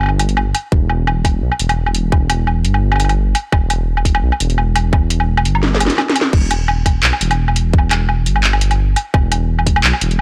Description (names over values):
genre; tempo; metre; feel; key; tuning
half-time drum and bass; 171 BPM; 4/4; swing 54% on 16ths, half-time; E minor; A4 = 438 Hz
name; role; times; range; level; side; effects
dark detuned saw bass; bass; 0.0-10.2 s; E1 to B1; -18 LUFS; equal; none
drum and bass drum kit; drums; 0.0-10.2 s; crash cymbal, handclaps, hi-hat, snare drum, woodblock; -19 LUFS; equal; none
electronic kick drum; drums; 0.7-9.7 s; none; -16 LUFS; equal; none
room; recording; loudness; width
little or no reverb; dry, gritty hardware recording; -16 LUFS; mono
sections
0.0-10.2 A section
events
drum fill 5.6-6.3; kick drops out 6.0-6.3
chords
none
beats
0.02 0.37 | 0.72 1.07 1.42 1.77 | 2.12 2.47 2.83 3.18 | 3.53 3.88 4.23 4.58 | 4.93 5.28 5.63 5.98 | 6.33 6.68 7.04 7.39 | 7.74 8.09 8.44 8.79 | 9.14 9.49 9.84 10.19